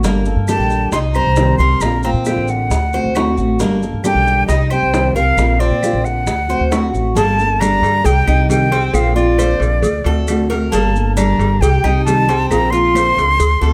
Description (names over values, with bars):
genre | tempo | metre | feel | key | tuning
latin, Cuban son and guajira | 135 BPM | 4/4 | straight | G minor | A4 = 440 Hz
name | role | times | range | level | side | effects
nylon-string guitar | accompaniment | 0.0-13.7 s | C3 to A4 | -22 LUFS | equal | none
Cuban tres | arpeggios | 0.0-13.7 s | Bb3 to C5 | -24 LUFS | equal | none
upright bass | bass | 0.0-13.7 s | G1 to Bb2 | -19 LUFS | equal | none
bongos and cowbell | percussion | 0.0-13.7 s | none | -26 LUFS | equal | none
maracas | percussion | 0.0-13.7 s | none | -35 LUFS | equal | none
jazz flute | melody | 0.5-13.7 s | D5 to C6 | -20 LUFS | equal | none
claves | percussion | 0.5-13.2 s | none | -38 LUFS | equal | none
room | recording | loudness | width
light reverb | close, detailed microphones | -15 LUFS | mono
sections
0.0-7.2 A section; 7.2-13.7 B section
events
none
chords
0.0 Gmadd9; 0.9 Cm; 1.8 Bbadd9; 2.7 D7; 3.6 Gmadd9; 4.5 Cm; 5.4 Bbadd9; 6.3 D7; 7.2 Gmadd9; 8.1 Cm; 8.9 Bbadd9; 9.8 D7; 10.7 Gmadd9; 11.6 Cm; 12.5 Bbadd9